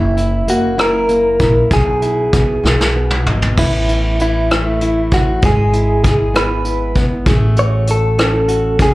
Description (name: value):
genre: six-eight pop ballad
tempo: 65 BPM (dotted quarters)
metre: 6/8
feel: straight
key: E major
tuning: A4 = 440 Hz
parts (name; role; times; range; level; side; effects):
- direct-recorded clean electric guitar; melody; 0.0-8.9 s; E4 to C#5; -16 LUFS; equal; plate reverb
- flamenco guitar; accompaniment; 0.0-8.9 s; F#2 to B4; -21 LUFS; left 1 dB; plate reverb, slapback echo
- upright bass; bass; 0.0-8.9 s; F#1 to B1; -17 LUFS; equal; none
- vintage brush drum kit; drums; 0.2-8.9 s; crash cymbal, hi-hat, kick drum, rim click, snare drum, toms; -17 LUFS; equal; none
room: light reverb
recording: live gig heard through the venue's PA, club reverb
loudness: -12 LUFS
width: side -18 dB against mid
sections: 0.0-3.6 A section; 3.6-8.9 B section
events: drum fill 2.6-3.6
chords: 0.0 F#7; 1.7 E/B; 2.6 B; 3.6 Amadd9; 5.4 E/G#; 7.3 F#madd9/A